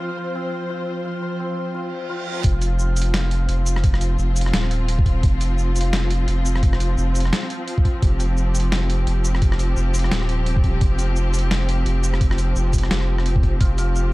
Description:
half-time drum and bass; 172 BPM; 4/4; swing 58% on 16ths, half-time; A4 = 441 Hz
clear studio string section; sustained chords; 0.0-14.1 s; F3 to C5; -27 LUFS; left 1 dB; sidechain pumping
santur; arpeggios; 0.0-5.5, 13.6-14.1 s; F3 to F5; -32 LUFS; left 2 dB; dub echo
reverse cymbal; sound effects; 1.9-2.4 s; -34 LUFS; right 6 dB
saturated sub bass; bass; 2.4-14.1 s; Eb1 to F1; -20 LUFS; equal
boom bap sampler-style drum kit; drums; 2.4-14.0 s; hi-hat, rim click, shaker, snare drum; -26 LUFS; equal
electronic kick drum; drums; 2.4-13.7 s; -18 LUFS; equal
little or no reverb; dark, warm production; -18 LUFS; side -20 dB against mid
0.0-2.4 A section; 2.4-14.1 B section
reverse cymbal 1.9-2.4; drop 2.4-14.1
0.0 F5
0.00 0.35 0.70 | 1.05 1.40 1.75 2.09 | 2.44 2.79 3.14 3.49 | 3.84 4.19 4.54 4.88 | 5.23 5.58 5.93 6.28 | 6.63 6.98 7.33 7.67 | 8.02 8.37 8.72 9.07 | 9.42 9.77 10.12 10.47 | 10.81 11.16 11.51 11.86 | 12.21 12.56 12.91 13.26 | 13.61 13.95

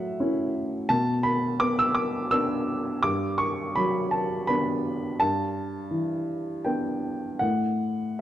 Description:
neoclassical minimalist piano; 83 BPM; 3/4; uneven beats, rubato; B minor; A4 = 440 Hz
warm upright piano; solo; 0.0-8.2 s; G2 to E6; -24 LUFS; equal
moderate recital hall reverb, RT60 1.4 s; dark, warm production; -24 LUFS; side -12 dB against mid
0.0-8.2 A section
0.0 F#m7/A; 0.9 Bm; 3.0 Gmaj7; 5.2 Em7/G; 7.4 F#m/A
0.19 | 0.89 1.60 2.32 | 3.04 3.75 4.47 | 5.19 5.92 6.66 | 7.42 8.20

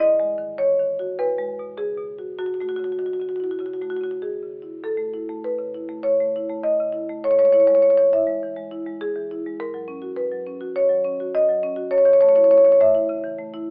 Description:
classical, contemporary piece for solo marimba; 102 BPM; 4/4; rubato; F# dorian; A4 = 439 Hz
marimba with medium mallets; solo; 0.0-13.7 s; E2 to E5; -21 LUFS; equal
light reverb; telephone sound; -21 LUFS; mono
0.0-4.8 A section; 4.8-13.7 B section
0.0 G#5; 1.2 Eadd9; 2.4 F#m9; 4.8 F#m7; 7.2 Amaj7; 9.6 G#m11; 11.9 F#m7
| 0.01 0.59 1.18 1.77 | 2.38 2.99 3.61 4.22 | 4.84 5.44 6.04 6.63 | 7.23 7.82 8.40 8.99 | 9.58 10.17 10.76 11.34 | 11.91 12.50 13.09 13.67

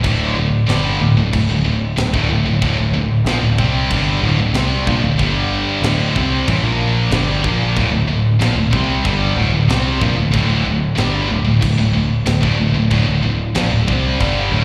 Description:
heavy metal; 93 BPM; 4/4; straight; D minor; A4 = 440 Hz
fuzz guitar; riff; 0.0-14.6 s; D2 to C4; -25 LUFS; equal; distortion, slapback echo
heavy high-gain guitar; riff; 0.0-14.6 s; D2 to C4; -22 LUFS; equal; distortion, slapback echo
high-gain distorted guitar; riff; 0.0-14.6 s; D2 to C4; -26 LUFS; equal; distortion, slapback echo
picked electric bass; bass; 0.0-14.6 s; D1 to C2; -20 LUFS; equal
tight metal drum kit; drums; 0.0-14.4 s; crash cymbal, kick drum, snare drum; -27 LUFS; equal
little or no reverb; live gig heard through the venue's PA, recital hall reverb; -16 LUFS; mono
0.0-14.6 A section
0.0 Dm; 5.2 G5; 5.8 Dm
| 0.05 0.69 1.33 1.98 | 2.62 3.26 3.91 4.55 | 5.19 5.84 6.48 7.12 | 7.76 8.41 9.05 9.70 | 10.34 10.98 11.63 12.27 | 12.92 13.56 14.21

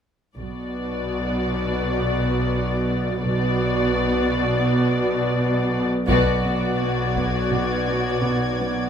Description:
cinematic, suspense film score; 84 BPM; 4/4; straight; B minor; A4 = 441 Hz
muted studio violin section; melody; 0.4-8.9 s; D5; -27 LUFS; left 3 dB
muted studio viola section; accompaniment; 0.4-8.9 s; B3 to F#4; -26 LUFS; right 1 dB
muted studio cello section; bass; 0.4-8.9 s; B2; -26 LUFS; right 2 dB
muted studio double bass section; bass; 0.4-6.8 s; B1; -29 LUFS; right 2 dB
bowed-like drone; drone; 0.6-8.9 s; B1; -27 LUFS; equal; built-in reverb
muted studio violin section; second line; 6.1-8.9 s; F#4; -27 LUFS; left 3 dB
muted chamber cello section; riff; 6.1-8.8 s; B2 to B3; -28 LUFS; equal
taiko ensemble; drums; 6.1-7.5 s; -30 LUFS; left 1 dB
muted studio violin section; texture; 6.1-8.9 s; D6 to G#6; -33 LUFS; left 1 dB
light reverb; close, detailed microphones; -20 LUFS; side -8 dB against mid
0.4-6.1 A section; 6.1-8.9 B section
band accent 6.1-6.8
0.4 Bm
| 0.38 1.09 1.81 2.52 | 3.23 3.95 4.66 5.38 | 6.09 6.81 7.52 8.23

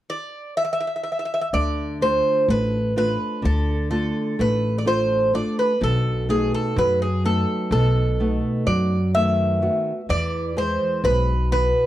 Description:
greek folk, Greek bouzouki band; 126 BPM (eighths); 9/8; straight; A4 = 440 Hz
Greek bouzouki; melody; 0.1-11.9 s; G#4 to E5; -22 LUFS; right 1 dB
nylon-string guitar; accompaniment; 1.5-11.9 s; B2 to B4; -24 LUFS; equal
upright bass; bass; 1.5-11.7 s; A1 to F#2; -23 LUFS; left 1 dB
studio reverb; dry, close 1970s-style studio recording; -19 LUFS; side -13 dB against mid
0.0-1.5 A section; 1.5-11.9 B section
0.0 N.C.; 1.5 Dm; 5.8 B7; 10.1 E
0.09 0.57 1.05 | 1.52 2.00 2.48 2.95 3.43 3.91 4.38 4.86 5.33 | 5.81 6.29 6.76 7.24 7.71 8.19 8.67 9.14 9.62 | 10.09 10.57 11.05 11.52

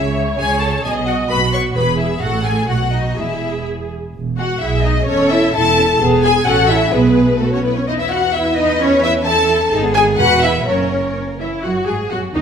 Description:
quick classical-period movement for string orchestra; 128 BPM; 2/4; rubato; E major; A4 = 440 Hz
rich symphonic violin section; melody; 0.0-12.4 s; G#3 to C#6; -23 LUFS; left 4 dB
warm symphonic violin section; second line; 0.0-12.4 s; D#4 to A5; -18 LUFS; left 3 dB
rich symphonic viola section; accompaniment; 0.0-12.4 s; A3 to D#5; -20 LUFS; right 1 dB
warm studio cello section; bass; 0.0-12.4 s; E2 to B4; -22 LUFS; right 2 dB
warm symphonic double bass section; bass; 0.0-12.4 s; E1 to G#2; -21 LUFS; right 3 dB
wet recital hall reverb, RT60 1.3 s; -13 LUFS; side -7 dB against mid
0.0-4.1 A section; 4.1-11.6 B section
0.0 C#5; 0.9 B5; 1.8 E; 2.2 F#m/A; 2.7 B; 3.2 E; 5.1 A/E; 6.0 E; 6.5 A; 6.9 G#m/B; 7.4 B5; 7.9 E5; 8.8 A/E; 9.7 G#m; 10.2 E; 10.7 F#; 11.6 D#madd11
| 0.40 0.86 | 1.31 1.76 | 2.22 2.69 | 3.18 3.66 | 4.14 4.61 | 5.08 5.54 | 6.00 6.47 | 6.94 7.41 | 7.88 8.35 | 8.81 9.26 | 9.72 10.19 | 10.67 11.16 | 11.64 12.11

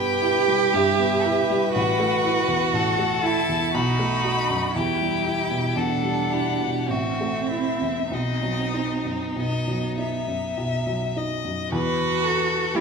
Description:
classical, slow romantic movement for piano quartet; 47-62 BPM; 3/4; rubato; E minor; A4 = 440 Hz
clear violin; melody; 0.0-12.8 s; G4 to B5; -27 LUFS; left 6 dB
rich cello; second line; 0.0-12.8 s; B3 to G4; -25 LUFS; right 7 dB
rich violin; second line; 0.0-12.8 s; D#4 to B4; -30 LUFS; left 3 dB
warm baby grand piano; accompaniment; 0.0-12.8 s; A1 to F#4; -26 LUFS; equal
wet scoring stage reverb, RT60 1.8 s; -21 LUFS; side -5 dB against mid
0.0-11.7 A section; 11.7-12.8 B section
0.0 Em/G; 1.8 B7sus4/A; 3.7 B7; 4.8 Em; 6.9 Am; 8.1 B; 11.7 E5
0.74 | 1.76 2.74 3.74 | 4.75 5.77 6.89 | 8.11 9.37 10.57 | 11.72 12.75

